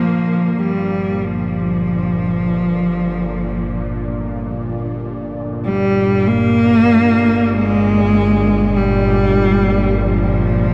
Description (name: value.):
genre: dark ambient drone.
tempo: free time.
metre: none.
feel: none.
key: G phrygian.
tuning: A4 = 439 Hz.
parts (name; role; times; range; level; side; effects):
rich cello; melody; 0.0-10.7 s; F3 to Bb3; -18 LUFS; equal; shimmer reverb, delay.
bowed-like drone; drone; 0.0-10.7 s; G1 to Bb2; -22 LUFS; equal; built-in reverb, phaser.
wind-like tuned noise texture; texture; 0.2-10.7 s; D4 to D5; -31 LUFS; equal; built-in reverb, shimmer reverb.
room: wet huge ambient reverb, RT60 8.1 s.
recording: dark, warm production.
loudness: -16 LUFS.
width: mono.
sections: 0.0-10.7 A section.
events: fade-in on synth drone 0.0-10.7; fade-in on synth texture 0.0-10.7.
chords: 0.0 Gm.